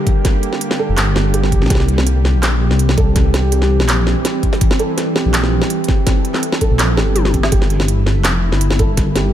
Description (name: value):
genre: half-time drum and bass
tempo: 165 BPM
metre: 4/4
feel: half-time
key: unclear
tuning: A4 = 440 Hz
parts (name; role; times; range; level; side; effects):
- bowed-like drone; sustained chords; 0.0-9.3 s; D3 to A4; -21 LUFS; right 1 dB; built-in reverb, vintage 12-bit sampler grit, sidechain pumping
- felt-muted upright piano; arpeggios; 0.0-9.3 s; G4 to A4; -23 LUFS; right 3 dB; low-pass filter, digital delay
- electronic kick drum; drums; 0.1-9.1 s; none; -15 LUFS; equal; none
- organic electronic drum kit; drums; 0.1-9.2 s; handclaps, hi-hat, snare drum, toms; -20 LUFS; equal; overdrive
- dark detuned saw bass; bass; 0.9-9.3 s; F1 to C2; -15 LUFS; equal; none
- backwards swelling texture; texture; 7.9-9.3 s; E4 to E5; -28 LUFS; left 8 dB; built-in reverb
room: little or no reverb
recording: none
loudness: -12 LUFS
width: side -11 dB against mid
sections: 0.0-9.3 A section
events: drum fill 7.2-7.5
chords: 0.0 Gm; 1.7 C; 7.5 Gm